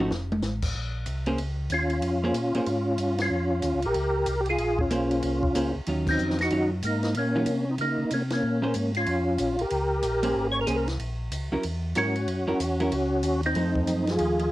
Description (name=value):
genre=soul jazz organ trio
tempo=187 BPM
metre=4/4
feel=swing 63% on 8ths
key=unclear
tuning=A4 = 440 Hz
part: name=vintage hollow-body jazz guitar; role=accompaniment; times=0.0-2.7, 4.9-14.5 s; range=Eb3 to C5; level=-28 LUFS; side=right 1 dB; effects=cassette tape
part: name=mellow tonewheel organ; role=bass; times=0.0-14.5 s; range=F1 to Db3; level=-30 LUFS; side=equal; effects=chorus vibrato, slow rotary speaker
part: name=compact cocktail drum kit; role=drums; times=0.0-14.5 s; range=crash cymbal, hi-hat, kick drum, ride cymbal, snare drum, toms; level=-35 LUFS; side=equal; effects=cassette tape
part: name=percussive tonewheel organ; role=melody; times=1.7-14.5 s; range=Bb3 to Db5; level=-26 LUFS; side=equal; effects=slow rotary speaker, chorus vibrato, cassette tape
room=light reverb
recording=home recording on cassette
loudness=-24 LUFS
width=side -16 dB against mid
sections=0.8-14.5 A section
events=drum fill 0.0-0.4; band accent 3.1, 6.0, 8.3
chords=0.1 F; 0.8 Bbm9; 5.9 Ebm9; 8.4 Bbm9; 11.0 Gb7; 13.6 F7b9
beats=0.11 0.43 | 0.75 1.07 1.39 1.71 | 2.03 2.35 2.67 2.99 | 3.31 3.63 3.95 4.27 | 4.59 4.91 5.23 5.55 | 5.87 6.19 6.51 6.83 | 7.15 7.47 7.79 8.11 | 8.43 8.75 9.07 9.39 | 9.71 10.03 10.35 10.67 | 10.99 11.31 11.63 11.96 | 12.28 12.60 12.92 13.24 | 13.56 13.88 14.20